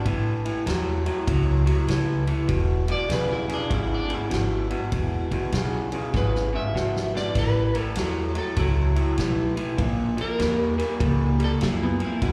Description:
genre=electric blues shuffle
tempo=99 BPM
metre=4/4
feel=swing 65% on 8ths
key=E mixolydian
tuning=A4 = 441 Hz
part: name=electric slide guitar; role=melody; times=0.0-12.3 s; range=B3 to E5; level=-32 LUFS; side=equal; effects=slapback echo
part: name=electric guitar through a small old amp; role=riff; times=0.0-12.3 s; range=E2 to G3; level=-29 LUFS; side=equal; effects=spring reverb, slapback echo
part: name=upright bass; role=bass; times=0.1-12.3 s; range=E1 to F#2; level=-28 LUFS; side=equal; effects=none
part: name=swinging big-band drum kit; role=drums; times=0.1-12.3 s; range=kick drum, ride cymbal, snare drum, splash cymbal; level=-33 LUFS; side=equal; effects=none
room=light reverb, small room reverb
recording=live gig heard through the venue's PA, recital hall reverb, small room ambience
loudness=-24 LUFS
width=mono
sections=0.0-12.3 A section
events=electric slide guitar solo 0.0-12.3; drum fill 6.1-7.4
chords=0.1 A6; 2.5 E6; 7.4 A69; 9.8 A#dim7

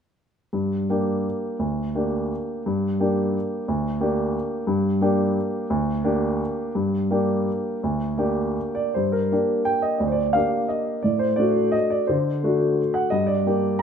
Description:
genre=classical, piano waltz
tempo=142-190 BPM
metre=3/4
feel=rubato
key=G minor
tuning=A4 = 440 Hz
part: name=warm upright piano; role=solo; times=0.5-13.8 s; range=D2 to Bb5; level=-21 LUFS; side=equal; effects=none
room=wet recital hall reverb, RT60 1.4 s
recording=none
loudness=-21 LUFS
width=side -7 dB against mid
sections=0.5-9.0 A section; 9.0-13.8 B section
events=none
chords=0.5 Gm; 11.0 D7/A; 13.1 Gm

